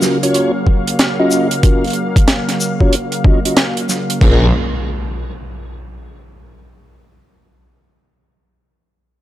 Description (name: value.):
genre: glitch hop.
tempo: 93 BPM.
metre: 4/4.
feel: swing 64% on 16ths.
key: Bb minor.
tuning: A4 = 445 Hz.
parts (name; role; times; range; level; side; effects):
warm analog pad; sustained chords; 0.0-4.5 s; Db3 to F5; -20 LUFS; equal; chorus, sidechain pumping.
tonewheel organ; stabs; 0.0-4.5 s; Db4 to Eb5; -18 LUFS; equal; chorus vibrato, slow rotary speaker, sidechain pumping, low-pass filter, tape echo.
tight funk drum kit; drums; 0.0-4.4 s; crash cymbal, hi-hat, shaker, snare drum; -17 LUFS; right 1 dB; none.
electronic kick drum; drums; 0.7-4.4 s; none; -12 LUFS; equal; overdrive.
phased detuned saw bass; bass; 4.2-4.5 s; Bb1; -12 LUFS; equal; phaser, tube saturation.
impact; sound effects; 4.2-6.8 s; none; -25 LUFS; equal; none.
room: light reverb, small room reverb.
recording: dry, gritty hardware recording.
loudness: -12 LUFS.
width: side -13 dB against mid.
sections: 0.0-4.2 A section; 4.2-6.8 B section.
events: filter sweep on tonewheel organ 0.0-4.2.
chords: 0.0 Gbmaj7; 4.2 Bbm7.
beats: 0.34 0.99 | 1.64 2.28 2.92 3.57 | 4.21 4.86 5.51 6.15.